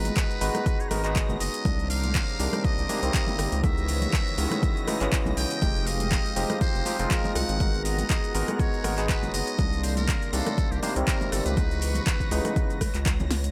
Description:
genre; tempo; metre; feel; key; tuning
deep house; 121 BPM; 4/4; swing 55% on 16ths; unclear; A4 = 441 Hz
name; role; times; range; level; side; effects
trumpet with metal mute; melody; 0.0-13.0 s; G4 to G5; -36 LUFS; equal; tape echo
warm analog pad; sustained chords; 0.0-13.5 s; Ab3 to Eb6; -40 LUFS; equal; chorus, sidechain pumping
barky tine electric piano; stabs; 0.0-12.8 s; C3 to Cb5; -33 LUFS; equal; overdrive, sidechain pumping
round analog bass; bass; 0.0-13.5 s; F1 to Db2; -31 LUFS; equal; sidechain pumping
granular cloud pad; texture; 0.0-13.5 s; Ab3 to Bb5; -45 LUFS; equal; none
string machine, violins; texture; 0.0-13.5 s; Bb6; -46 LUFS; equal; none
deep house drum kit; drums; 0.1-13.5 s; handclaps, hi-hat, rim click, shaker, snare drum; -35 LUFS; equal; overdrive
congas; percussion; 0.1-13.3 s; none; -38 LUFS; equal; none
electronic kick drum; drums; 0.2-13.2 s; none; -29 LUFS; equal; overdrive
room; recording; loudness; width
little or no reverb; none; -26 LUFS; mono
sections
0.0-13.5 A section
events
drum fill 13.3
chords
0.0 Abm9; 1.7 Cm9; 3.6 Dbm9; 5.6 Fm9; 7.6 Abm9; 9.6 Cm9; 11.6 Dbm9

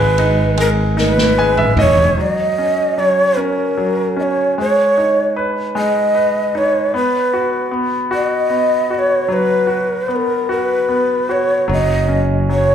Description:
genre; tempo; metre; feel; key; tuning
six-eight pop ballad; 50 BPM (dotted quarters); 6/8; straight; unclear; A4 = 442 Hz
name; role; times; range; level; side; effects
breathy mellow shakuhachi; melody; 0.0-12.7 s; A#4 to D#5; -16 LUFS; equal; slapback echo, tape echo
bright concert grand piano; accompaniment; 0.0-12.7 s; F#3 to G#5; -19 LUFS; equal; slapback echo
sustaining fretless electric bass; bass; 0.0-2.1, 11.7-12.7 s; E1 to G#1; -17 LUFS; equal; none
unplugged drum kit; drums; 0.2-2.2 s; ride cymbal, snare drum, toms; -20 LUFS; right 1 dB; none
room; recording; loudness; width
light reverb, studio reverb; live gig heard through the venue's PA, club reverb; -13 LUFS; side -8 dB against mid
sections
0.0-2.2 A section; 2.2-12.7 B section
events
drum fill 1.0-2.2; grand piano fill 1.0-2.2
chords
0.0 G#m; 2.2 F#; 4.6 G#m; 6.9 B5; 11.7 F#5

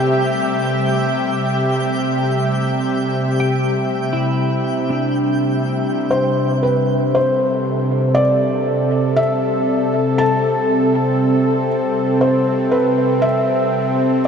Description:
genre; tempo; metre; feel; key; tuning
ambient; 59 BPM; 3/4; straight; C major; A4 = 440 Hz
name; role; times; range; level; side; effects
warm analog pad; sustained chords; 0.0-14.3 s; C3 to E5; -17 LUFS; equal; chorus
bowed-like drone; drone; 0.0-14.3 s; C3 to G3; -26 LUFS; right 1 dB; built-in reverb
twinkling granular texture; texture; 0.0-6.1 s; G5; -29 LUFS; right 1 dB; built-in reverb
clean electric guitar; arpeggios; 3.4-8.6 s; D4 to G5; -25 LUFS; equal; analog chorus, tape echo
felt-muted upright piano; melody; 6.1-14.3 s; B4 to A5; -20 LUFS; equal; tape echo
room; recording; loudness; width
wet huge ambient reverb, RT60 8.7 s; dreamy mix soaked in reverb; -15 LUFS; side -6 dB against mid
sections
0.0-6.1 A section; 6.1-14.3 B section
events
fade-out on synth drone 6.1-14.3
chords
0.0 C6

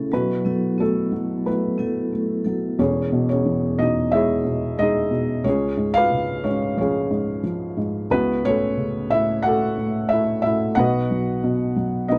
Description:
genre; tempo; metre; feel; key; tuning
acoustic folk-pop ballad; 90 BPM; 4/4; straight; E major; A4 = 440 Hz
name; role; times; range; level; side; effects
felt-muted upright piano; melody; 0.0-12.2 s; E1 to F#5; -22 LUFS; equal; none
vibraphone with medium hard mallets; arpeggios; 0.0-2.9 s; F#3 to A4; -27 LUFS; equal; none
room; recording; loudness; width
moderate small room reverb, RT60 0.5 s; dark, warm production; -22 LUFS; mono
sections
0.0-2.8 A section; 2.8-12.2 B section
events
none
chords
0.1 B7sus4; 2.8 E6; 5.4 C#7; 8.1 F#m7/C#; 10.8 B

